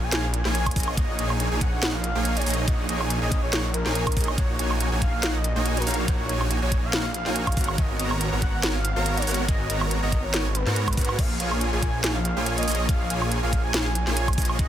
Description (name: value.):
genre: future bass.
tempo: 141 BPM.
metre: 4/4.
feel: swing 54% on 16ths, half-time.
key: unclear.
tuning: A4 = 440 Hz.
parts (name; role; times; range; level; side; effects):
warm velvety synth lead; melody; 0.0-14.7 s; Bb4 to Ab5; -32 LUFS; equal; chorus, sidechain pumping, tape echo.
supersaw chords; riff; 0.0-14.7 s; Bb3 to Bb5; -28 LUFS; right 1 dB; wide subtle chorus, sidechain pumping.
wide detuned saw bass; bass; 0.0-14.7 s; Ab1 to Ab2; -26 LUFS; equal; chorus, sidechain pumping.
trap drum kit; drums; 0.1-14.7 s; crash cymbal, hi-hat, snare drum, woodblock; -28 LUFS; right 1 dB; none.
electronic kick drum; drums; 0.7-14.7 s; none; -24 LUFS; equal; none.
room: digital ambience.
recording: dense, heavily limited modern master.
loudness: -22 LUFS.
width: side -11 dB against mid.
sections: 0.0-14.7 A section.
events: none.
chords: 0.0 Bbm7; 1.0 Gb69/Bb; 4.4 Ebm7/Bb; 7.6 Abm11; 11.2 Bbm7.